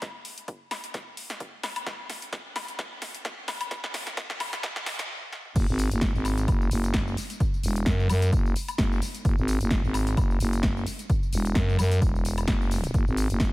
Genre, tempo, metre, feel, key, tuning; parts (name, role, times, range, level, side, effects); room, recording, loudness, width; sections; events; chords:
bass house; 130 BPM; 4/4; swing 55% on 16ths; A4 = 440 Hz
electronic kick drum; drums; 0.0-13.5 s; -26 LUFS; equal; high-pass filter on kick
house drum kit; drums; 0.0-13.5 s; crash cymbal, hi-hat, snare drum, tambourine, toms, woodblock; -32 LUFS; left 1 dB; high-pass filter on hats, high-pass filter on snare, high-pass filter on perc, high-pass filter on toms, high-pass filter on cymbals
growling FM bass; bass; 5.6-13.5 s; E1 to F#2; -25 LUFS; equal; tube saturation, sidechain pumping
light reverb, digital ambience; high-pass filter; -24 LUFS; side -20 dB against mid
0.0-5.6 A section; 5.6-13.5 B section
build-up 0.0-5.6; drum fill 0.0-5.1, 5.3; stop 5.1-5.6; drop 5.6-13.5